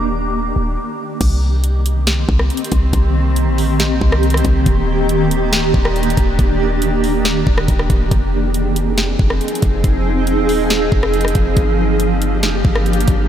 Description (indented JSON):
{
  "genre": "hip hop, atmospheric cloud-rap",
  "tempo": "139 BPM",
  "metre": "4/4",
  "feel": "half-time",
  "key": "C minor",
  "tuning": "A4 = 440 Hz",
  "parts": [
    { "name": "glassy synth bell", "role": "melody", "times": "0.0-0.7 s", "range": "D6", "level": "-30 LUFS", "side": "equal", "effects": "chorus, low-pass filter, ping-pong delay" },
    { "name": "granular cloud pad", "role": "sustained chords", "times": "0.0-13.3 s", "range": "Eb3 to Ab4", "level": "-18 LUFS", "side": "right 1 dB", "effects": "built-in reverb, sidechain pumping, low-pass filter" },
    { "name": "warm 808-style bass", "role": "bass", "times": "0.0-13.3 s", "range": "D1 to C2", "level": "-18 LUFS", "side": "equal", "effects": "none" },
    { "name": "trap drum kit", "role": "drums", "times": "1.2-13.2 s", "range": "crash cymbal, hi-hat, kick drum, rim click, snare drum", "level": "-18 LUFS", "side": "equal", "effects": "none" }
  ],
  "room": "light reverb, digital ambience",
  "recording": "none",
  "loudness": "-13 LUFS",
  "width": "side -10 dB against mid",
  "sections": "0.0-1.2 A section; 1.2-13.3 B section",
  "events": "stop 0.8-1.2",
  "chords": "0.0 Ebmaj7; 1.2 Cm7; 4.7 Ebmaj7; 8.1 Fm7; 11.6 Gm7",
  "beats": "0.34 0.78 | 1.21 1.64 2.07 2.50 | 2.93 3.37 3.80 4.23 | 4.66 5.09 5.52 5.96 | 6.39 6.82 7.25 7.68 | 8.11 8.55 8.98 9.41 | 9.84 10.27 10.70 11.14 | 11.57 12.00 12.43 12.86"
}